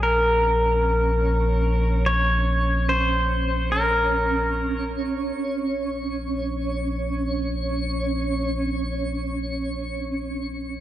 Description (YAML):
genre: ambient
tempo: free time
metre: none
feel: none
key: Bb minor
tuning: A4 = 437 Hz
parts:
  - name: pedal steel guitar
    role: melody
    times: 0.0-4.9 s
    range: Bb4 to Db5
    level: -22 LUFS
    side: left 1 dB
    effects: diffuse ambient delay
  - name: warm sub bass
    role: bass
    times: 0.0-10.8 s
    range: Bb1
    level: -25 LUFS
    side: equal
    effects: none
  - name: twinkling granular texture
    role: texture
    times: 0.0-10.8 s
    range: Db4 to Db7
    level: -28 LUFS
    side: right 2 dB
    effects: built-in reverb
room: wet concert hall reverb, RT60 2.4 s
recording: worn, warbling old tape, cassette tape, warbly pitch drift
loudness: -21 LUFS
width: side -12 dB against mid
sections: 0.0-10.8 A section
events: fade-in on synth texture 0.0-10.8; fade-out on sub bass 0.0-10.8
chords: 0.0 Bbm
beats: free time